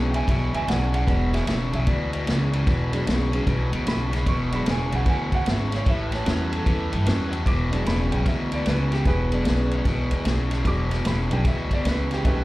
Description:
electric blues shuffle; 150 BPM; 4/4; swing 65% on 8ths; E mixolydian; A4 = 440 Hz
dark concert grand piano; accompaniment; 0.0-12.4 s; E3 to D6; -29 LUFS; right 2 dB
raw garage guitar; riff; 0.0-12.4 s; E2 to F#3; -28 LUFS; left 1 dB; overdrive, slapback echo
upright bass; bass; 0.0-12.4 s; E1 to G2; -24 LUFS; equal
vintage drum kit; drums; 0.1-12.4 s; kick drum, ride cymbal, snare drum; -26 LUFS; equal
studio ambience; live gig heard through the venue's PA, club reverb; -21 LUFS; side -18 dB against mid
0.0-12.4 A section
0.0 E7; 5.9 A7; 7.5 E7

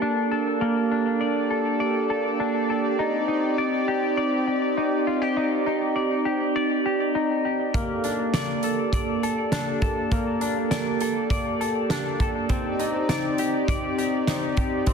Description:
dream pop; 101 BPM; 4/4; straight; G minor; A4 = 437 Hz
warm analog pad; sustained chords; 0.0-14.9 s; Bb3 to D5; -25 LUFS; right 2 dB; chorus
semi-hollow electric guitar; arpeggios; 0.0-14.9 s; Bb3 to D5; -26 LUFS; left 4 dB; lush chorus, digital delay
loose indie drum kit; drums; 7.7-14.9 s; hi-hat, kick drum, snare drum; -27 LUFS; right 1 dB
wet lush hall reverb, RT60 2.6 s; dense, heavily limited modern master; -22 LUFS; side -6 dB against mid
0.0-14.9 A section
0.0 Gmadd9; 3.0 Cmadd9; 7.7 Gmadd9; 12.5 Cmadd9

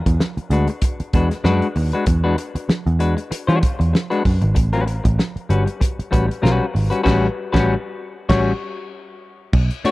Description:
funk; 96 BPM; 4/4; swing 56% on 16ths; A4 = 440 Hz
semi-hollow electric guitar; accompaniment; 0.1-9.9 s; G3 to C#5; -22 LUFS; left 3 dB; spring reverb
vintage muted picked electric bass; bass; 0.1-9.9 s; G1 to E3; -18 LUFS; right 1 dB
warm soul drum kit; drums; 0.1-9.9 s; crash cymbal, hi-hat, kick drum, snare drum; -20 LUFS; equal
little or no reverb; -16 LUFS; side -19 dB against mid
0.0-9.5 A section
band accent 7.1-9.5
0.0 E9; 4.6 A13

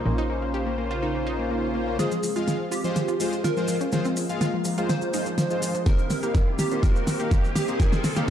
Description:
progressive house; 124 BPM; 4/4; straight; F minor; A4 = 440 Hz
plucky unison lead; melody; 0.0-8.3 s; Eb4 to C5; -31 LUFS; right 1 dB; phaser, digital delay
filtered supersaw swell; sustained chords; 0.0-8.3 s; Db3 to C5; -33 LUFS; right 1 dB; phaser, sidechain pumping, low-pass filter
analog pluck; arpeggios; 0.0-8.3 s; F3 to G4; -31 LUFS; equal; chorus, sidechain pumping, dub echo
soft supersaw; stabs; 0.0-8.3 s; Ab3 to F5; -30 LUFS; left 2 dB; sidechain pumping, dub echo
plucky analog bass; bass; 0.0-2.0 s; Bb1; -30 LUFS; equal; sidechain pumping
swell and riser; sound effects; 1.2-8.3 s; -37 LUFS; left 2 dB
pop drum kit; drums; 2.0-8.3 s; hi-hat, snare drum; -28 LUFS; equal; studio reverb, sidechain pumping on hats
maracas; percussion; 2.0-8.3 s; -37 LUFS; left 1 dB
electronic kick drum; drums; 5.9-7.9 s; -21 LUFS; equal; studio reverb
moderate lush hall reverb, RT60 2.1 s; dark, warm production; -22 LUFS; side -10 dB against mid
0.0-2.0 A section; 2.0-8.3 B section
swell 1.2-2.0; build-up 2.0-8.3; drum fill 2.0-8.3; riser 2.0-8.3; filter sweep on synth pluck 2.0-8.3; filter sweep on supersaw synth 2.0-8.3
0.1 Bbmadd9; 2.0 Fm; 5.9 Cm7; 7.8 Bbmadd9

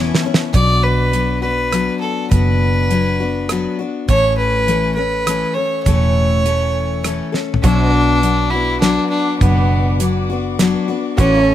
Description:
honky-tonk and classic country; 102 BPM; 3/4; straight; B minor; A4 = 438 Hz
picked steel-string acoustic guitar; accompaniment; 0.0-11.5 s; A2 to A4; -19 LUFS; left 5 dB
pedal steel guitar; sustained chords; 0.0-0.5, 7.6-11.5 s; E4 to D5; -28 LUFS; right 2 dB
warm studio violin section; sustained chords; 0.0-0.5, 7.6-11.5 s; A4 to D6; -30 LUFS; equal
vintage muted fingered electric bass; bass; 0.0-11.5 s; E1 to B1; -18 LUFS; right 1 dB
damped 70s drum kit; drums; 0.1-11.3 s; hi-hat, kick drum, rim click, snare drum, toms; -17 LUFS; right 1 dB
clear fiddle; melody; 0.5-11.5 s; B3 to D5; -18 LUFS; right 1 dB
little or no reverb; -14 LUFS; side -12 dB against mid
0.5-7.6 A section; 7.6-11.5 B section
drum fill 0.0-0.5, 7.3
0.0 Aadd9; 0.5 Bm; 4.1 A; 7.6 Bm

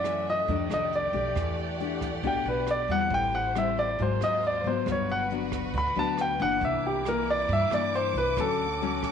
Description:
bossa nova; 137 BPM; 4/4; straight; A4 = 440 Hz
clear baby grand piano; melody; 0.0-9.1 s; G4 to B5; -27 LUFS; equal; slapback echo
nylon-string guitar; accompaniment; 0.0-9.1 s; F2 to G4; -31 LUFS; left 10 dB
warm studio violin section; sustained chords; 0.0-9.1 s; A3 to D6; -36 LUFS; right 2 dB
upright bass; bass; 0.0-9.1 s; G1 to G2; -35 LUFS; right 2 dB
jazz brush drum kit; drums; 0.0-9.1 s; hi-hat, kick drum, rim click; -39 LUFS; right 7 dB
light reverb, small room ambience; 1960s-style stereo with parts hard left and right; -25 LUFS; side -7 dB against mid
0.0-9.1 A section
grand piano solo 0.0-9.1
0.5 F13; 1.4 Em11; 3.1 Am7; 4.0 G#13; 4.9 Gmaj7; 6.6 C9; 8.4 Dmaj7

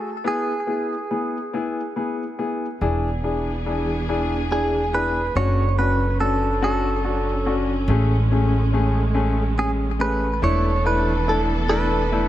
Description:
six-eight pop ballad; 47 BPM (dotted quarters); 6/8; straight; A4 = 437 Hz
clear baby grand piano; accompaniment; 0.0-12.3 s; A3 to G#4; -24 LUFS; left 3 dB
direct-recorded clean electric guitar; melody; 0.3-12.3 s; G#4 to C#5; -24 LUFS; right 2 dB; ping-pong delay
warm studio string section; sustained chords; 2.8-12.3 s; D3 to A4; -28 LUFS; right 1 dB
upright bass; bass; 2.8-12.3 s; E1 to A1; -22 LUFS; equal
light reverb, small room ambience; -19 LUFS; side -13 dB against mid
0.0-2.8 A section; 2.8-12.3 B section
0.2 E; 2.8 E7; 5.4 Dmaj7/F#; 7.9 Amaj7; 10.4 E7sus4

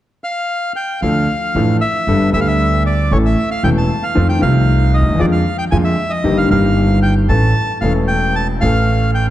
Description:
tango; 115 BPM; 4/4; rubato; A4 = 439 Hz
bandoneon; melody; 0.2-9.3 s; C#5 to A5; -19 LUFS; equal
clear concert grand piano; accompaniment; 1.0-9.3 s; E1 to A4; -16 LUFS; left 2 dB
upright bass; bass; 1.0-9.3 s; E1 to F2; -16 LUFS; right 1 dB
moderate concert hall reverb, RT60 2.3 s; dark, warm production; -13 LUFS; side -13 dB against mid
0.0-1.0 A section; 1.0-9.3 B section
0.0 N.C.; 1.0 Dm; 2.1 Gadd9; 3.1 A; 4.2 F7; 5.2 Bb7/F; 6.2 Eb/G; 7.3 A

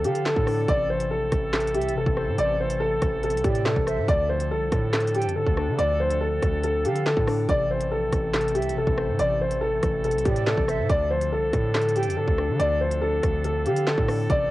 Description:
hip hop, drill; 141 BPM; 4/4; half-time; D minor; A4 = 441 Hz
dark grand piano; melody; 0.0-14.5 s; G4 to D5; -24 LUFS; equal; cassette tape, analog delay
breathy concert flute; second line; 0.0-13.9 s; D5 to G5; -35 LUFS; right 9 dB; cassette tape, analog delay
warbly lo-fi synth keys; accompaniment; 0.0-14.5 s; C3 to C5; -31 LUFS; left 6 dB; chorus, cassette tape
warm woodwind section; sustained chords; 0.0-14.5 s; E3 to A4; -36 LUFS; right 1 dB; cassette tape
hard-hitting 808-style bass; bass; 0.0-14.5 s; A1 to D3; -28 LUFS; right 1 dB
drill drum kit; drums; 0.0-14.4 s; handclaps, hi-hat, kick drum, rim click, snare drum; -26 LUFS; right 1 dB
little or no reverb; home recording on cassette; -21 LUFS; side -16 dB against mid
0.0-4.1 A section; 4.1-14.5 A section
0.0 Dm7; 0.7 Am; 4.1 Dm7; 7.5 Am; 10.9 Dm7

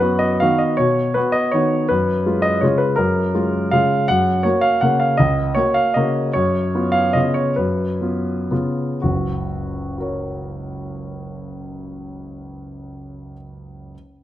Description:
classical, piano waltz; 107-174 BPM; 3/4; rubato; F# major; A4 = 440 Hz
warm grand piano; solo; 0.0-14.0 s; F#1 to F#5; -17 LUFS; equal
moderate recital hall reverb, RT60 1.5 s; close, detailed microphones; -16 LUFS; side -13 dB against mid
0.0-9.0 A section; 9.0-11.9 B section
slowing down 5.8-9.0
0.0 B/F#; 1.9 C#7/F#; 4.1 F#; 6.3 C#7/F#; 9.0 F#

